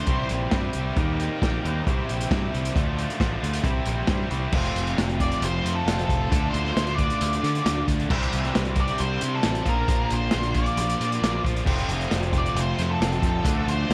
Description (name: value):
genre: classic rock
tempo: 135 BPM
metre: 4/4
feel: straight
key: F major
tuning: A4 = 440 Hz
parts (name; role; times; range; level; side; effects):
- octave-fuzz lead guitar; melody; 0.0-0.3, 5.2-13.9 s; A4 to D5; -31 LUFS; equal; distortion
- bright tonewheel organ; sustained chords; 0.0-13.9 s; G3 to D5; -41 LUFS; equal; none
- crunchy overdriven guitar; riff; 0.0-13.9 s; F2 to G4; -35 LUFS; equal; spring reverb
- distorted electric guitar; riff; 0.0-13.9 s; F2 to E4; -34 LUFS; equal; overdrive
- growling picked electric bass; bass; 0.1-13.9 s; F1 to D3; -30 LUFS; equal; overdrive
- vintage drum kit; drums; 0.1-13.9 s; crash cymbal, hi-hat, kick drum, snare drum; -28 LUFS; equal; none
- fuzz guitar; riff; 4.5-13.9 s; F2 to F4; -35 LUFS; equal; none
room: light reverb, studio reverb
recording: none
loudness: -24 LUFS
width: mono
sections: 0.0-4.5 A section; 4.5-13.9 B section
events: none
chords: 0.1 C; 1.0 Eb6; 1.9 C; 2.8 Dm; 3.6 C; 4.5 F; 6.3 Dm; 8.1 Cadd9; 9.7 Bb; 11.7 F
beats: 0.09 0.54 | 0.98 1.43 1.87 2.32 | 2.76 3.21 3.65 4.09 | 4.54 4.98 5.43 5.87 | 6.32 6.76 7.21 7.65 | 8.10 8.54 8.99 9.44 | 9.88 10.33 10.77 11.22 | 11.67 12.11 12.56 13.01 | 13.45 13.90